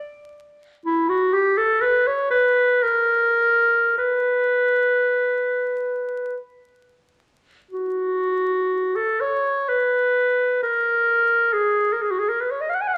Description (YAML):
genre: classical, free, expressive piece for unaccompanied clarinet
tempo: 38-67 BPM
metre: 3/4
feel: rubato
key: unclear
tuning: A4 = 440 Hz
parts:
  - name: clear clarinet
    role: solo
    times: 0.9-13.0 s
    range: E4 to G#5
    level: -21 LUFS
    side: equal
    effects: none
room: moderate recital hall reverb, RT60 1.5 s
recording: vinyl crackle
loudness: -21 LUFS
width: mono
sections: 0.0-7.7 A section; 7.7-13.0 B section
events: none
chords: none